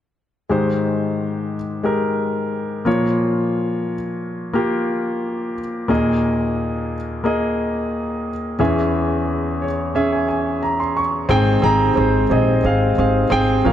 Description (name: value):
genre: pop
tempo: 89 BPM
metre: 4/4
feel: straight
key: Ab major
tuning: A4 = 440 Hz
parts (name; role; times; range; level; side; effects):
- clear grand piano; accompaniment; 0.5-13.7 s; Eb2 to Db6; -18 LUFS; equal; none
- glass harmonica; sustained chords; 11.3-13.7 s; Ab3 to Db5; -28 LUFS; right 3 dB; none
- upright bass; bass; 11.3-13.7 s; Ab1 to Bb1; -19 LUFS; equal; none
room: moderate recital hall reverb, RT60 1.5 s, small room ambience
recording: lossy compression artefacts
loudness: -17 LUFS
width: side -10 dB against mid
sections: 0.5-11.3 A section; 11.3-13.7 B section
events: grand piano fill 9.3-11.3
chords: 0.5 Abmaj7; 2.9 Bbm; 5.9 Ebsus4; 8.6 Dbm/Fb; 11.3 Abmaj7